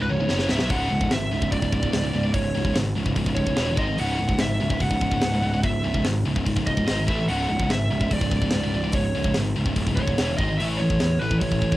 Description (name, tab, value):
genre	heavy metal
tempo	146 BPM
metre	4/4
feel	straight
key	C# minor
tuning	A4 = 440 Hz
part	high-gain lead guitar	melody	0.0-11.8 s	B4 to F#5	-28 LUFS	right 2 dB	distortion, cassette tape
part	scooped high-gain guitar	riff	0.0-11.8 s	C#2 to A3	-28 LUFS	left 4 dB	distortion, cassette tape
part	scooped high-gain guitar	riff	0.0-11.8 s	C#2 to A3	-29 LUFS	right 4 dB	distortion, cassette tape
part	fuzz picked electric bass	bass	0.0-11.8 s	C#1 to E2	-26 LUFS	equal	overdrive
part	tight metal drum kit	drums	0.3-11.8 s	hi-hat, kick drum, snare drum	-27 LUFS	equal	none
room	studio ambience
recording	home recording on cassette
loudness	-21 LUFS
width	side -16 dB against mid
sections	0.7-11.8 A section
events	drum fill 0.3-0.7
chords	0.0 C#m; 0.7 C#5; 3.6 E5; 3.8 G#5; 4.0 C#m; 6.9 G#5; 7.1 A5; 7.3 C#5; 10.2 E5; 10.4 G#5; 10.6 A